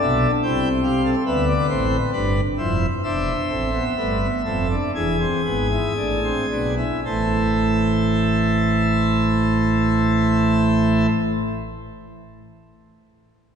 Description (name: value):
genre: classical, baroque-style 4-part fugue for pipe organ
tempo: 54-73 BPM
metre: 4/4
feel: straight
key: A minor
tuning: A4 = 441 Hz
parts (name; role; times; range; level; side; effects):
- pipe organ, plenum; solo; 0.0-11.1 s; E1 to A5; -18 LUFS; equal; none
room: wet church reverb, RT60 2.7 s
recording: heard from further back in the room, nothing above 10.4 kHz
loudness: -18 LUFS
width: side -7 dB against mid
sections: 0.0-7.0 A section; 7.0-11.4 B section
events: slowing down 0.0-7.0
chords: 0.0 Am; 1.3 Bdim; 3.0 Am/E; 4.9 E7; 7.0 Am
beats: 0.43 1.27 2.14 | 3.04 3.97 4.95 5.97 | 7.04 8.13 9.23 10.32